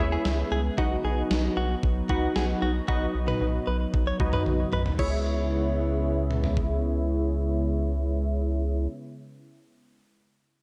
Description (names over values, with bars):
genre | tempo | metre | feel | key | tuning
synth-pop | 114 BPM | 4/4 | straight | C# minor | A4 = 441 Hz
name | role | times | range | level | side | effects
funky polysynth comp | accompaniment | 0.0-8.9 s | D#4 to F#5 | -33 LUFS | equal | chorus, low-pass filter
lush unison pad | sustained chords | 0.0-8.9 s | C#3 to E4 | -35 LUFS | equal | chorus, low-pass filter
rubbery square bass | bass | 0.0-8.9 s | B1 to D#2 | -30 LUFS | equal | none
direct-recorded clean electric guitar | second line | 0.1-6.5 s | F#4 to C#5 | -36 LUFS | equal | tape echo
gated 80s digital drum machine | drums | 0.3-6.7 s | crash cymbal, kick drum, snare drum, toms | -32 LUFS | equal | gated reverb, gated reverb snare
room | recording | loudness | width
moderate lush hall reverb, RT60 1.9 s | dark, warm production | -26 LUFS | mono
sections
0.0-5.0 A section; 5.0-9.2 B section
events
filter sweep 0.0-5.0; drum fill 4.5-5.0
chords
0.0 C#m7; 0.8 B; 5.0 C#m7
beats
0.25 | 0.78 1.31 1.83 2.36 | 2.88 3.41 3.94 4.46 | 4.99 5.52 6.04 6.57 | 7.09 7.62 8.15 8.67